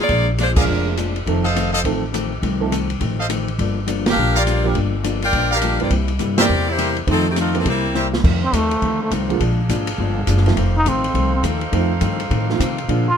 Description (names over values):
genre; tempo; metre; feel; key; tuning
jazz, big band swing; 206 BPM; 4/4; swing 62% on 8ths; F mixolydian; A4 = 441 Hz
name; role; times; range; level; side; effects
edgy saxophone section; melody; 0.0-1.0, 4.1-8.1 s; Eb3 to G5; -20 LUFS; left 1 dB; none
vintage hollow-body jazz guitar; accompaniment; 0.1-13.1 s; F2 to E4; -25 LUFS; left 6 dB; none
upright bass; bass; 0.1-13.2 s; F1 to C3; -21 LUFS; equal; none
open jazz drum kit; drums; 0.1-13.0 s; crash cymbal, hi-hat, kick drum, ride cymbal, snare drum; -24 LUFS; equal; none
clear upright piano; accompaniment; 0.6-13.1 s; D3 to A4; -24 LUFS; right 8 dB; none
brilliant trumpet section; stabs; 0.6-8.1 s; G4 to F5; -22 LUFS; equal; none
clear saxophone section; sustained chords; 8.2-13.2 s; D4 to F5; -29 LUFS; right 2 dB; none
trombone with metal mute; melody; 8.4-13.2 s; A3 to F4; -19 LUFS; right 1 dB; none
room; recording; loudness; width
little or no reverb; close, detailed microphones; -16 LUFS; side -8 dB against mid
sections
0.0-8.2 A section; 8.2-13.2 B section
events
band accent 0.5, 4.0, 6.4; drum fill 8.0; trombone solo 8.2-13.2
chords
0.0 Bb7; 1.3 F7; 3.6 Gm7; 5.9 C7; 7.1 F7; 7.7 C7; 8.2 F7; 9.4 Bb7; 10.6 F7